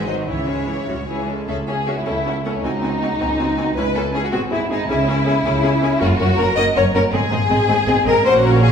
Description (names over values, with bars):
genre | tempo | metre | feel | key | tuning
quick classical-period movement for string orchestra | 106 BPM (dotted quarters) | 6/8 | rubato | C# minor | A4 = 441 Hz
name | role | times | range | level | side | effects
rich symphonic violin section | melody | 0.0-8.7 s | C#5 to G#5 | -32 LUFS | left 5 dB | none
rich symphonic violin section | second line | 0.0-8.7 s | C#4 to E5 | -19 LUFS | left 2 dB | none
rich symphonic viola section | accompaniment | 0.0-8.7 s | E3 to Bb4 | -23 LUFS | equal | none
rich symphonic cello section | bass | 0.0-8.7 s | C#2 to D#3 | -23 LUFS | right 1 dB | none
rich symphonic double bass section | bass | 0.0-8.7 s | Gb1 to C#2 | -24 LUFS | right 2 dB | none
room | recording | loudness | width
wet recital hall reverb, RT60 1.7 s | heard from further back in the room | -16 LUFS | side -7 dB against mid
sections
0.0-1.5 A section; 1.5-8.7 A section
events
none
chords
0.3 C#m; 2.1 F#m/C#; 2.6 G#7/C#; 3.8 C#m; 4.3 G#; 4.9 C#m; 6.0 Gb; 7.1 Ab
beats
| 0.27 0.88 | 1.49 2.06 | 2.64 3.20 | 3.77 4.33 | 4.90 5.45 | 6.01 6.57 | 7.13 7.68 | 8.24